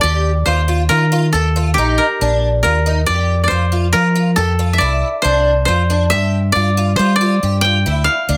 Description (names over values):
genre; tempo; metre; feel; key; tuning
progressive instrumental, band music in an uneven meter; 138 BPM; 7/4; straight; unclear; A4 = 440 Hz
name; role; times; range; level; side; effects
koto; melody; 0.0-8.4 s; G4 to G5; -19 LUFS; equal; none
picked twelve-string acoustic guitar; arpeggios; 0.0-8.4 s; D4 to G4; -23 LUFS; equal; ensemble chorus
fingered electric bass; bass; 0.0-8.4 s; Bb1 to G3; -18 LUFS; equal; none
room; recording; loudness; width
moderate studio reverb, RT60 0.8 s; none; -15 LUFS; mono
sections
0.0-8.4 A section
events
none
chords
0.0 Ebmaj7; 3.1 F5; 6.1 G5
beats
| 0.03 0.47 0.90 1.34 1.77 2.21 2.64 | 3.08 3.51 3.94 4.38 4.81 5.25 5.68 | 6.12 6.55 6.99 7.42 7.85 8.29